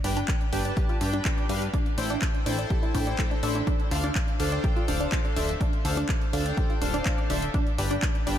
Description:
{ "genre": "progressive house", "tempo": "124 BPM", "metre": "4/4", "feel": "straight", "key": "D dorian", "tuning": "A4 = 439 Hz", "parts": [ { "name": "wide unison pluck", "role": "arpeggios", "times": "0.0-8.4 s", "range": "A3 to D5", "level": "-32 LUFS", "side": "right 1 dB", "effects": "sidechain pumping, diffuse ambient delay" }, { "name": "chorused polysynth", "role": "stabs", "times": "0.0-8.4 s", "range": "D4 to A5", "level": "-31 LUFS", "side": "left 1 dB", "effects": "sidechain pumping, diffuse ambient delay" }, { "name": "plucky analog bass", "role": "bass", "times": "0.0-8.4 s", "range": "D1 to A2", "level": "-30 LUFS", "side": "equal", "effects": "sidechain pumping" }, { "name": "house drum kit", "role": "drums", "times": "0.0-8.4 s", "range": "handclaps, hi-hat", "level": "-35 LUFS", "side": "left 1 dB", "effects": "small room ambience" }, { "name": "electronic kick drum", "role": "drums", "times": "0.3-8.1 s", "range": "none", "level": "-27 LUFS", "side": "equal", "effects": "small room ambience" } ], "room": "light reverb", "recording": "none", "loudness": "-24 LUFS", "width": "side -10 dB against mid", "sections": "0.0-8.4 A section", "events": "none", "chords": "0.0 G; 1.7 Am7; 3.7 Dm7; 7.5 G" }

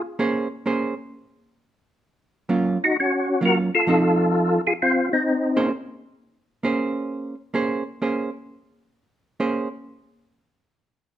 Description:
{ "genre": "jazz", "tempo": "130 BPM", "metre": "4/4", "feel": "swing 66% on 8ths", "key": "Bb minor", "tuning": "A4 = 440 Hz", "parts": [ { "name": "percussive tonewheel organ", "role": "melody", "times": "0.0, 2.8-5.7 s", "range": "C4 to Bb4", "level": "-20 LUFS", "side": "left 1 dB", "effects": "slow rotary speaker, chorus vibrato" }, { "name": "hollow-body jazz guitar", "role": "accompaniment", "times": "0.2-9.7 s", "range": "F3 to C5", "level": "-22 LUFS", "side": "right 2 dB", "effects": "none" } ], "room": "moderate large studio reverb, RT60 1.1 s", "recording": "none", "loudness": "-20 LUFS", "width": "side -11 dB against mid", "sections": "0.0-9.4 A section; 9.4-11.2 B section", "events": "none", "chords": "0.0 Bbm9; 2.0 Gbmaj7; 3.9 F7; 5.7 Bbm9" }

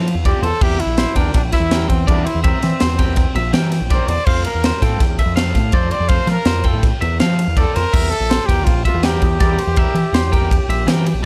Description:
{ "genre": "math rock and midwest emo", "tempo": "164 BPM", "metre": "5/4", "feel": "straight", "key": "unclear", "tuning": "A4 = 440 Hz", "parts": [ { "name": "breathy trumpet", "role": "melody", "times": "0.0-11.2 s", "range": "C4 to D5", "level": "-25 LUFS", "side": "equal", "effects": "tape echo" }, { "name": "twangy electric guitar", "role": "arpeggios", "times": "0.0-11.2 s", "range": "C5 to G5", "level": "-27 LUFS", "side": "equal", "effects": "tape echo" }, { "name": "raw garage guitar", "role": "riff", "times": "0.0-11.3 s", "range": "F3 to Bb4", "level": "-31 LUFS", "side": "equal", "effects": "overdrive" }, { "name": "growling picked electric bass", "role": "bass", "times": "0.0-11.3 s", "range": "Bb1 to F3", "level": "-21 LUFS", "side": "equal", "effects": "overdrive" }, { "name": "crisp fusion drum kit", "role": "drums", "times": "0.1-11.1 s", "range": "crash cymbal, kick drum, ride cymbal, snare drum", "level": "-20 LUFS", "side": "equal", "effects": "none" } ], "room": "little or no reverb", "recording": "dark, warm production", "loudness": "-16 LUFS", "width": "mono", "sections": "0.0-11.3 A section", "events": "none", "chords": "0.0 Fmaj9; 0.6 C7; 4.3 Fmaj9; 7.9 C7" }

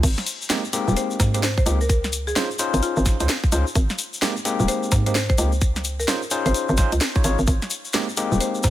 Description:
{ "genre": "UK garage, two-step garage", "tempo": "129 BPM", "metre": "4/4", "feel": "swing 63% on 16ths", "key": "Ab major", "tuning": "A4 = 440 Hz", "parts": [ { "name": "hollow knocking FM bass", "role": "bass", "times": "0.0-8.7 s", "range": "Eb1 to Ab2", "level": "-21 LUFS", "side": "equal", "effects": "none" }, { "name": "electronic kick drum", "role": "drums", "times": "0.0-8.7 s", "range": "none", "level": "-20 LUFS", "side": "equal", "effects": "none" }, { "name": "garage drum kit", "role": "drums", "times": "0.0-8.7 s", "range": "crash cymbal, hi-hat, snare drum", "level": "-26 LUFS", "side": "equal", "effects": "none" }, { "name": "egg shaker", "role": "percussion", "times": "0.0-8.7 s", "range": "none", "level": "-30 LUFS", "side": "left 4 dB", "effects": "none" }, { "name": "overdriven tine electric piano", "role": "stabs", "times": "0.5-8.7 s", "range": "Ab3 to Db5", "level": "-26 LUFS", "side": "moving between left 5 dB and right 6 dB", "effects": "auto-pan, dub echo" }, { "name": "buzzing marimba with medium mallets", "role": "melody", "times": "1.0-8.7 s", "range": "F4 to C5", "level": "-30 LUFS", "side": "right 1 dB", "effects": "dub echo" } ], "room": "little or no reverb", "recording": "none", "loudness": "-19 LUFS", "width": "side -13 dB against mid", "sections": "0.0-8.7 A section", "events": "none", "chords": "0.0 Abmaj9; 1.9 Dbmaj9; 3.8 Abmaj9; 5.6 Dbmaj9; 7.5 Abmaj9" }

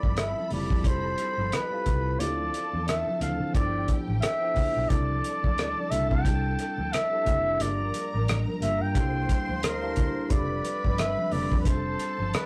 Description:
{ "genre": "lush 1970s-style soul", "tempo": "89 BPM", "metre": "4/4", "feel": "swing 58% on 16ths", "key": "unclear", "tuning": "A4 = 440 Hz", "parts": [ { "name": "breathy flugelhorn", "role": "melody", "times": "0.0-12.5 s", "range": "Bb4 to G5", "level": "-32 LUFS", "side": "equal", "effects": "none" }, { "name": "warm studio string section", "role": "second line", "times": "0.0-12.5 s", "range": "G4 to C6", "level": "-42 LUFS", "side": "equal", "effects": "none" }, { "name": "barky tine electric piano", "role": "accompaniment", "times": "0.0-12.5 s", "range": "E3 to A5", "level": "-36 LUFS", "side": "equal", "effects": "overdrive, phaser" }, { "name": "vintage muted fingered electric bass", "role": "bass", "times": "0.0-12.3 s", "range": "F1 to D3", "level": "-33 LUFS", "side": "equal", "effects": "none" }, { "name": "cloth-damped thuddy drum kit", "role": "drums", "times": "0.0-12.5 s", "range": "hi-hat, kick drum, rim click", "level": "-30 LUFS", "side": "equal", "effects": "none" }, { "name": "congas", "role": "percussion", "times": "0.0-12.5 s", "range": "none", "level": "-40 LUFS", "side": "equal", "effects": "none" } ], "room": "moderate studio ambience, RT60 0.5 s", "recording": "rough rehearsal-room recording, warm saturation", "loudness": "-27 LUFS", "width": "mono", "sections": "0.0-12.5 A section", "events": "none", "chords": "0.0 Fmaj9; 2.2 Dm9; 3.5 G13; 4.9 C69; 7.6 Gm9; 9.0 C13; 10.3 F6" }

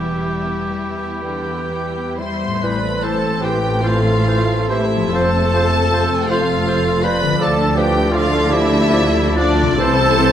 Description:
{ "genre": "classical", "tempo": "36-55 BPM (dotted quarters)", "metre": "6/8", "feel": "rubato", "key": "A minor", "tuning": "A4 = 440 Hz", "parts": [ { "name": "rich chamber violin section", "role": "melody", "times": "0.0-10.3 s", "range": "D5 to C6", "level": "-24 LUFS", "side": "left 1 dB", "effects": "none" }, { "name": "clear oboe", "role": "second line", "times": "0.0-10.3 s", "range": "G4 to D5", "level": "-28 LUFS", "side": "right 1 dB", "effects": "none" }, { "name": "warm symphonic violin section", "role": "second line", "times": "0.0-10.3 s", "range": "G3 to E4", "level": "-27 LUFS", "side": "left 1 dB", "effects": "none" }, { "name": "rich symphonic viola section", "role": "accompaniment", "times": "0.0-10.3 s", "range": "D3 to C5", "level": "-24 LUFS", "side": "right 1 dB", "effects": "none" }, { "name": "concert harp", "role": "arpeggios", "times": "0.0-10.3 s", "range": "A2 to E5", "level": "-26 LUFS", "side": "left 8 dB", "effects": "none" }, { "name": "rich symphonic cello section", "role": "bass", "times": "0.0-10.3 s", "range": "E2 to D3", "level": "-24 LUFS", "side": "right 2 dB", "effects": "none" }, { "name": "rich symphonic double bass section", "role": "bass", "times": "0.0-10.3 s", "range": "E1 to D2", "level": "-22 LUFS", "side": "right 1 dB", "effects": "none" }, { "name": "bright clarinet", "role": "second line", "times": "1.2-10.3 s", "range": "D4 to C5", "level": "-27 LUFS", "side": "left 2 dB", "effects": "none" }, { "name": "mellow hollow silver concert flute", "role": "second line", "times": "1.2-10.3 s", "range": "F4 to E5", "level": "-23 LUFS", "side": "left 1 dB", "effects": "none" }, { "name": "warm bassoon", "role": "accompaniment", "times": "2.6-10.3 s", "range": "E3 to F3", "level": "-27 LUFS", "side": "right 1 dB", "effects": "none" }, { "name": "mellow French horn section", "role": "sustained chords", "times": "2.6-10.3 s", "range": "A3 to A4", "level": "-27 LUFS", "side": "left 4 dB", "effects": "none" }, { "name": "warm trombone section", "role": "sustained chords", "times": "2.6-10.3 s", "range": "A2 to F3", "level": "-26 LUFS", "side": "right 3 dB", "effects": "none" }, { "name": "mellow trumpet section", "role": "stabs", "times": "2.6-10.3 s", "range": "C5 to D5", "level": "-26 LUFS", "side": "right 1 dB", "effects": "none" } ], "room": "moderate recital hall reverb, RT60 1.4 s", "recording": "none", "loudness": "-15 LUFS", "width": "side -10 dB against mid", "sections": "0.0-2.6 A section; 2.6-10.3 B section", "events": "none", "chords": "0.0 Em; 2.6 Am; 5.1 F; 7.4 Dm; 9.8 Am/C" }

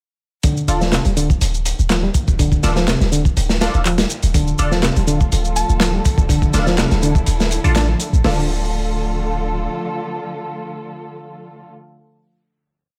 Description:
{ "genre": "breakbeat, breaks", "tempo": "123 BPM", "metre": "4/4", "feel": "straight", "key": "D minor", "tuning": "A4 = 440 Hz", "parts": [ { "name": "barky reed electric piano", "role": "riff", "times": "0.4-8.5 s", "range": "C3 to D4", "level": "-23 LUFS", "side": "equal", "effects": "overdrive, fast tremolo, delay" }, { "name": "crunchy breakbeat drum kit", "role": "drums", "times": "0.4-8.4 s", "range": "hi-hat, kick drum, snare drum", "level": "-21 LUFS", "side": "equal", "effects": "none" }, { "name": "electronic shaker and handclaps", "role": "drums", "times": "0.4-8.2 s", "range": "none", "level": "-28 LUFS", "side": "equal", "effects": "none" }, { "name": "band-passed chord stab", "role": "stabs", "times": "0.7-11.7 s", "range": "D4 to A4", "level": "-29 LUFS", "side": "equal", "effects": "phaser, ensemble chorus, cassette tape, delay" }, { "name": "warm 808-style bass", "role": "bass", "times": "0.7-9.7 s", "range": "D1 to A1", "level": "-21 LUFS", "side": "equal", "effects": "none" }, { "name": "muted studio string section", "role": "sustained chords", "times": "4.3-11.7 s", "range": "D3 to A4", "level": "-28 LUFS", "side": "equal", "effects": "sidechain pumping" }, { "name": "soft synth bell", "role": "melody", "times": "5.6-5.7 s", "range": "A5", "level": "-26 LUFS", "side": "equal", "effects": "chorus, old record sound, vintage 12-bit sampler grit, delay" } ], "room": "little or no reverb", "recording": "none", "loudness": "-17 LUFS", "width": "mono", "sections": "0.4-8.2 drop; 8.2-12.1 final chord", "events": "drop 0.4-8.2", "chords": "0.4 Dm" }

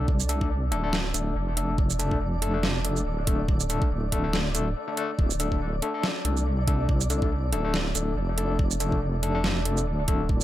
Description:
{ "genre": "deep dubstep", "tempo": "141 BPM", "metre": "4/4", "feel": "swing 56% on 16ths, half-time", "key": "D minor", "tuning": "A4 = 440 Hz", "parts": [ { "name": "overdriven tine electric piano", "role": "stabs", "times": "0.0-10.3 s", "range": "A3 to A4", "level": "-30 LUFS", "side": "left 3 dB", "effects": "medium tremolo, dub echo" }, { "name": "deep soft wobble bass", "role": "bass", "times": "0.0-10.4 s", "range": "D1 to C2", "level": "-27 LUFS", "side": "equal", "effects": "chorus" }, { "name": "flickering grainy texture", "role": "texture", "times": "0.0-10.4 s", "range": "D5", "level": "-36 LUFS", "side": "equal", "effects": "built-in reverb" }, { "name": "electronic kick drum", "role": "drums", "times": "0.1-10.4 s", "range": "none", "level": "-26 LUFS", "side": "equal", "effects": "none" }, { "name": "dubstep drum kit", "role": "drums", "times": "0.2-10.4 s", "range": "hi-hat, shaker, snare drum", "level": "-28 LUFS", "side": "right 2 dB", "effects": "none" } ], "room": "light reverb, digital ambience", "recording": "none", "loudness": "-24 LUFS", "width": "side -14 dB against mid", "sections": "0.0-10.4 A section", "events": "none", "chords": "0.0 D5" }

